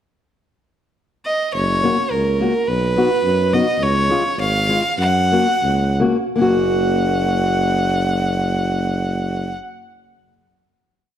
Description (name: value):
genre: alpine folk, alpine dance band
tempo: 76-107 BPM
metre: 2/4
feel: straight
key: F# major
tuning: A4 = 439 Hz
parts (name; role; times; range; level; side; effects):
- clear fiddle; melody; 1.3-9.6 s; A#4 to F#5; -19 LUFS; right 1 dB; none
- warm tuba; bass; 1.5-9.5 s; F#1 to F#2; -21 LUFS; right 1 dB; none
- fingerpicked steel-string acoustic guitar; accompaniment; 1.8-9.6 s; G#3 to F#4; -21 LUFS; left 2 dB; none
room: moderate recital hall reverb, RT60 1.7 s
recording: dark, warm production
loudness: -16 LUFS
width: side -10 dB against mid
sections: 0.4-1.5 pickup bar; 1.5-6.4 A section; 6.4-9.5 final chord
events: slowing down 3.8-6.4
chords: 0.4 N.C.; 1.5 F#; 2.7 B; 3.8 C#; 5.0 F#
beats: | 0.42 0.98 | 1.55 2.11 | 2.67 3.23 | 3.80 4.37 | 4.97 5.62 | 6.36 7.16 | 7.94 8.73